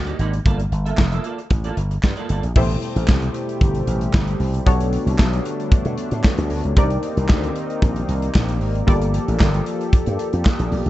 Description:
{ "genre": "early-eighties boogie funk", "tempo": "114 BPM", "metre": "4/4", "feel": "straight", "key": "unclear", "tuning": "A4 = 440 Hz", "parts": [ { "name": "slap bass with an envelope filter", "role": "bass", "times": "0.0-10.9 s", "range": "F1 to B2", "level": "-21 LUFS", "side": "equal", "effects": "none" }, { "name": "semi-hollow electric guitar", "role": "riff", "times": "0.1-2.5 s", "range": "Bb3 to E5", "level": "-29 LUFS", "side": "right 5 dB", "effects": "analog chorus" }, { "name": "modern studio drum kit", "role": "drums", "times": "0.1-10.9 s", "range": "crash cymbal, handclaps, hi-hat, kick drum, snare drum", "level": "-18 LUFS", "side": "equal", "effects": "none" }, { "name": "funky polysynth comp", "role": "accompaniment", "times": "2.6-10.9 s", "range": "B2 to D5", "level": "-26 LUFS", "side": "left 2 dB", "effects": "chorus" }, { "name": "warm analog pad", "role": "sustained chords", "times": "2.6-10.9 s", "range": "B2 to A4", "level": "-28 LUFS", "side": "equal", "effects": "chorus" } ], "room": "small room ambience", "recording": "dark, warm production, nothing above 8.0 kHz", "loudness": "-17 LUFS", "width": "side -15 dB against mid", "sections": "0.0-2.6 A section; 2.6-10.9 B section", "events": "none", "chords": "0.5 Gm9; 2.6 Am9; 4.7 Bm9; 6.8 Cm9; 8.9 Gm9" }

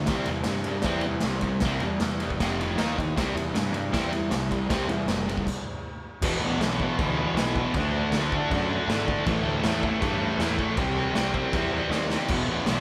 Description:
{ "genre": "garage rock duo or trio", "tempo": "158 BPM", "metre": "4/4", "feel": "straight", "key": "unclear", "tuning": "A4 = 440 Hz", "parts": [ { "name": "fuzz guitar", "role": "riff", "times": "0.0-12.8 s", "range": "E2 to D#4", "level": "-29 LUFS", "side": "equal", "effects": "distortion" }, { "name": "fuzz picked electric bass", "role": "bass", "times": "0.0-12.8 s", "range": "E1 to G2", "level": "-33 LUFS", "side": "equal", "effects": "overdrive, tube saturation" }, { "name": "raw garage drum kit", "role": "drums", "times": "0.1-12.8 s", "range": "crash cymbal, kick drum, ride cymbal, snare drum", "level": "-32 LUFS", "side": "equal", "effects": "none" } ], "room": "moderate large studio reverb, RT60 1.4 s", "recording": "band playing live in one room", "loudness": "-26 LUFS", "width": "mono", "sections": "0.0-6.2 A section; 6.2-12.8 B section", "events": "stop 5.5-6.2; drum fill 11.9-12.3", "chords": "0.1 C; 2.4 F5; 2.8 D#5; 3.2 C; 5.5 N.C.; 6.2 E5; 7.7 D; 9.3 A5; 10.8 C; 12.3 E5" }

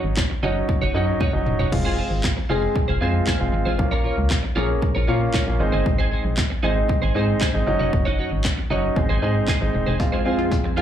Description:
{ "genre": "dance-pop", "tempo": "116 BPM", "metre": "4/4", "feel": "straight", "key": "unclear", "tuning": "A4 = 440 Hz", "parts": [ { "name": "warm grand piano", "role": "accompaniment", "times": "0.0-10.8 s", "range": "Gb3 to Ab4", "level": "-24 LUFS", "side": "left 1 dB", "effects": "sidechain pumping, plate reverb, slapback echo" }, { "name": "twelve-string electric guitar", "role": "riff", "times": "0.0-10.8 s", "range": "Eb4 to Db5", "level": "-28 LUFS", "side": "right 4 dB", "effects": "ensemble chorus, slapback echo" }, { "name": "organ-like FM bass", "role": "bass", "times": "0.0-10.0 s", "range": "Eb1 to Bb2", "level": "-23 LUFS", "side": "equal", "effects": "sidechain pumping" }, { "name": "punchy analog drum machine", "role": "drums", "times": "0.2-10.6 s", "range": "crash cymbal, handclaps, kick drum, snare drum, toms", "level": "-24 LUFS", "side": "equal", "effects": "none" }, { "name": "glassy FM pad", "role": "sustained chords", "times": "10.0-10.8 s", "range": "F2 to Ab4", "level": "-27 LUFS", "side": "right 1 dB", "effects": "ensemble chorus, built-in reverb, tremolo, sidechain pumping" }, { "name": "analog pluck", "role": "arpeggios", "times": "10.0-10.8 s", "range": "F3 to F4", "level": "-26 LUFS", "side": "left 2 dB", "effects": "chorus, sidechain pumping, digital delay, plate reverb, slapback echo" }, { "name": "riser", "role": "sound effects", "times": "10.7-10.8 s", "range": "none", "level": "barely audible", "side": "none", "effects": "none" } ], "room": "light reverb", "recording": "live gig heard through the venue's PA, club reverb", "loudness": "-19 LUFS", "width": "side -10 dB against mid", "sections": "0.0-10.0 A section", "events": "drum fill 1.2-1.7, 10.0-10.8", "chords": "0.0 Ebm7; 1.7 Fm; 3.8 Bbm; 5.6 Ab; 7.7 Ebm7; 9.0 Ab; 10.0 Fm" }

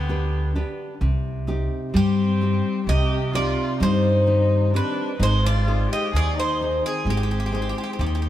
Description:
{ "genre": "greek folk", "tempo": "129 BPM (eighths)", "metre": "9/8", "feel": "straight", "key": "unclear", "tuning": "A4 = 439 Hz", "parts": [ { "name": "Greek bouzouki", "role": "melody", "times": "0.0-8.3 s", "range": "G4 to Eb5", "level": "-26 LUFS", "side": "equal", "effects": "none" }, { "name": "dark violin", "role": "second line", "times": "0.0-8.3 s", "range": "B3 to Ab4", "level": "-30 LUFS", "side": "left 1 dB", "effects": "none" }, { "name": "nylon-string guitar", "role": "accompaniment", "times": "0.0-8.3 s", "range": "C3 to C5", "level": "-25 LUFS", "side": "left 2 dB", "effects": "none" }, { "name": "upright bass", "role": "bass", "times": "0.0-8.3 s", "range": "Ab1 to G2", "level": "-22 LUFS", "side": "equal", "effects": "none" } ], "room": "moderate plate reverb, RT60 2.8 s", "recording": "heard from further back in the room", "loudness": "-20 LUFS", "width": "side -12 dB against mid", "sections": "0.0-8.3 A section", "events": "none", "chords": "0.0 G; 1.0 Cm; 5.2 Ab" }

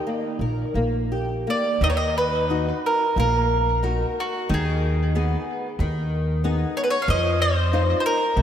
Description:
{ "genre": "fado-style ballad", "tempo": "82-94 BPM", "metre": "4/4", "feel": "rubato", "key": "Eb minor", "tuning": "A4 = 440 Hz", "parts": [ { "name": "mandolin", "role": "melody", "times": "0.0-8.4 s", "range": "Gb4 to F5", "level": "-23 LUFS", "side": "right 1 dB", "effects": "tape echo" }, { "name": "flamenco guitar", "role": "accompaniment", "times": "0.0-8.4 s", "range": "C3 to C5", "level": "-27 LUFS", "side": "left 2 dB", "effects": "analog chorus" }, { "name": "upright bass", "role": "bass", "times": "0.4-8.4 s", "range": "Bb1 to F2", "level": "-23 LUFS", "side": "equal", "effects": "none" } ], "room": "wet lush hall reverb, RT60 2.7 s", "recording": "dreamy mix soaked in reverb", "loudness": "-20 LUFS", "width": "side -9 dB against mid", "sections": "0.0-1.8 A section; 1.8-8.4 B section", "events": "none", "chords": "0.0 Eb; 1.8 Ebm; 4.5 Abm/Eb; 7.1 F7(no3)" }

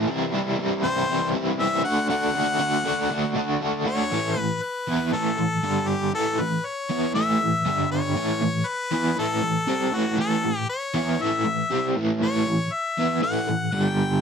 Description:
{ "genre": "rock", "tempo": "119 BPM", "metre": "4/4", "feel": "straight", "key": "unclear", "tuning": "A4 = 440 Hz", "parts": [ { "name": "crunchy overdriven guitar", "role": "riff", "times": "0.0-14.2 s", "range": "G2 to F#4", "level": "-23 LUFS", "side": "right 1 dB", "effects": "tremolo" }, { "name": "clear harmonica", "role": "melody", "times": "0.8-14.2 s", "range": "F#4 to G5", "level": "-26 LUFS", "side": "left 3 dB", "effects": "slapback echo" } ], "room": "light reverb", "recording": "dry, close 1970s-style studio recording", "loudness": "-21 LUFS", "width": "side -6 dB against mid", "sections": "0.0-4.1 A section; 4.1-14.2 B section", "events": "none", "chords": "0.1 C; 1.9 D; 4.1 A; 5.6 G5; 6.1 A; 7.7 G5; 8.2 A" }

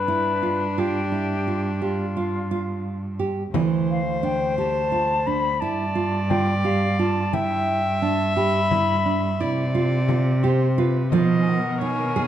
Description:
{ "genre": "contemporary instrumental, chamber music in an uneven meter", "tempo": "174 BPM (eighths)", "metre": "11/8", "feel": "straight", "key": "G mixolydian", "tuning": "A4 = 440 Hz", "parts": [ { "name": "silver concert flute", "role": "melody", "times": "0.0-12.3 s", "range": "F4 to B5", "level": "-26 LUFS", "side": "left 4 dB", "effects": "none" }, { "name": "dark viola", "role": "second line", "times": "0.0-12.3 s", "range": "D4 to E5", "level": "-27 LUFS", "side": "left 2 dB", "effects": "none" }, { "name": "warm cello", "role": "bass", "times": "0.0-12.3 s", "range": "D2 to C3", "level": "-25 LUFS", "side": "right 1 dB", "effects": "none" }, { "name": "nylon-string guitar", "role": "arpeggios", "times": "0.1-12.3 s", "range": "E3 to Ab4", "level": "-25 LUFS", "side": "right 4 dB", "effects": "none" }, { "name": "frame drum", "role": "percussion", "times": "3.5-11.4 s", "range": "none", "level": "-30 LUFS", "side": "left 6 dB", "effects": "none" }, { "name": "clear chamber string section", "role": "sustained chords", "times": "11.1-12.3 s", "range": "D#3 to A#4", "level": "-32 LUFS", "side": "left 2 dB", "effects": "none" } ], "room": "moderate recital hall reverb, RT60 1.4 s", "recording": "dark, warm production", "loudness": "-20 LUFS", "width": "side -10 dB against mid", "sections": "0.0-3.5 A section; 3.5-12.3 B section", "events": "none", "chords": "0.0 G7; 3.5 D7(no3); 5.6 G5; 7.3 Em/G; 9.4 C; 11.1 Bmaj7" }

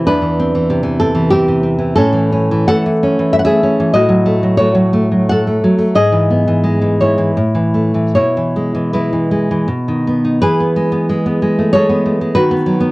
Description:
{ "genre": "romantic piece for solo classical guitar", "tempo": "74-100 BPM", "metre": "3/4", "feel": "rubato", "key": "E major", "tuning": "A4 = 439 Hz", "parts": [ { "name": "nylon-string guitar", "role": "solo", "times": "0.0-12.9 s", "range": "E2 to F#5", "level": "-11 LUFS", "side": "equal", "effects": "none" } ], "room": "moderate small room reverb, RT60 0.5 s", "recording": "worn, warbling old tape, cassette tape, warbly pitch drift", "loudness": "-11 LUFS", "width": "side -21 dB against mid", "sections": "0.0-10.4 A section; 10.4-12.9 B section", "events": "none", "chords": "0.1 C/E; 2.0 A; 3.9 F#m/A; 6.0 E/G#; 7.4 A; 8.1 E/B; 9.7 B; 10.4 E; 12.3 B/D#" }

